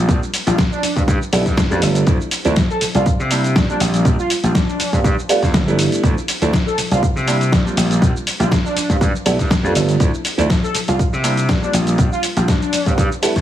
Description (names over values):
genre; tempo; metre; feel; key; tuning
filtered disco house; 121 BPM; 4/4; swing 54% on 16ths; unclear; A4 = 440 Hz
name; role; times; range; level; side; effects
clear concert grand piano; accompaniment; 0.0-13.3 s; F3 to F4; -22 LUFS; right 2 dB; phaser, sidechain pumping
gritty slap bass; bass; 0.0-13.4 s; G1 to C3; -18 LUFS; equal; overdrive, tube saturation, sidechain pumping
dusty soul sampler-style drum kit; drums; 0.1-13.4 s; hi-hat, shaker, snare drum; -21 LUFS; left 1 dB; overdrive
electronic kick drum; drums; 0.1-13.4 s; none; -17 LUFS; equal; none
analog synth brass; melody; 0.5-13.0 s; D4 to A4; -25 LUFS; equal; chorus, vintage 12-bit sampler grit, sidechain pumping
room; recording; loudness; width
light reverb; heavily compressed radio sound, multiband compression, small room ambience; -14 LUFS; side -11 dB against mid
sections
0.0-13.4 A section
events
none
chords
0.0 Bb69; 1.1 G9; 2.1 Dm9; 2.8 C7sus4; 3.8 Bb69; 5.0 G9; 6.0 Dm9; 6.8 C7sus4; 7.8 Bb69; 9.0 G9; 10.0 Dm9; 10.7 C7sus4; 11.7 Bb69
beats
| 0.09 0.58 1.08 1.57 | 2.07 2.56 3.06 3.56 | 4.05 4.55 5.04 5.54 | 6.04 6.53 7.03 7.52 | 8.02 8.52 9.01 9.51 | 10.00 10.50 10.99 11.49 | 11.99 12.48 12.98